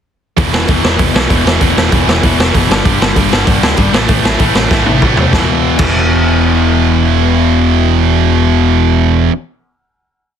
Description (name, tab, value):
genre	punk rock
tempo	193 BPM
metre	4/4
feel	straight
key	unclear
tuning	A4 = 440 Hz
part	raw garage guitar	riff	0.4-9.3 s	E2 to A3	-15 LUFS	left 15 dB	overdrive
part	tight distorted guitar	riff	0.4-9.3 s	E2 to A3	-14 LUFS	right 16 dB	distortion
part	overdriven picked electric bass	bass	0.4-9.3 s	E1 to E2	-15 LUFS	equal	none
part	raw garage drum kit	drums	0.4-5.9 s	crash cymbal, hi-hat, kick drum, snare drum, toms	-13 LUFS	equal	none
room	little or no reverb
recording	dense, heavily limited modern master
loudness	-9 LUFS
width	side -8 dB against mid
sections	0.4-5.3 verse; 5.3-7.8 final chord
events	drum fill 4.7-5.3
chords	0.4 E5; 2.7 G5; 3.9 A5; 5.3 E5